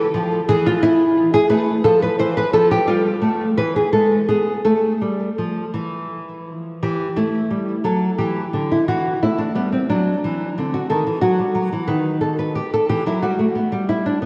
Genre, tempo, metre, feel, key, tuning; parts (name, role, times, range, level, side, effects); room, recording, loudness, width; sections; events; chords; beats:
classical, baroque-style dance for nylon-string guitar; 54-61 BPM (dotted quarters); 6/8; rubato; A4 = 440 Hz
nylon-string guitar; solo; 0.0-14.3 s; D3 to C5; -19 LUFS; equal; lush chorus, digital delay
wet lush hall reverb, RT60 2.8 s; dreamy mix soaked in reverb, cassette tape; -19 LUFS; mono
0.0-6.8 A section; 6.8-14.3 A section
0.5 N.C.; 1.5 A5; 2.5 F; 3.6 E; 4.7 A5; 6.8 Dadd9; 10.9 D#dim; 12.9 Em
| 0.49 1.50 | 2.53 3.58 | 4.65 5.74 | 6.82 7.85 | 8.88 9.89 | 10.90 11.89 | 12.89 13.89